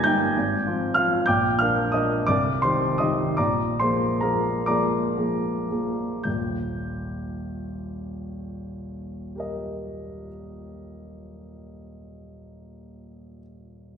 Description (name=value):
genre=classical, romantic character piece for solo piano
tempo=35-66 BPM (dotted quarters)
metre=6/8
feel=rubato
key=Eb major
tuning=A4 = 440 Hz
part: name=warm upright piano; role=solo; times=0.0-14.0 s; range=Eb1 to Bb6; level=-23 LUFS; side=equal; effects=none
room=wet scoring stage reverb, RT60 1.9 s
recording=minimal, uncompressed stereo recording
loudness=-22 LUFS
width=side -7 dB against mid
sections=0.0-6.2 A section; 6.2-12.5 B section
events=slowing down 0.3-6.2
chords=0.3 Fm/Ab; 1.3 Bb; 2.3 Cm; 3.4 Bb7; 6.2 Eb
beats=0.35 | 1.27 2.27 | 3.37 4.67 | 6.25 7.79 | 9.35 10.93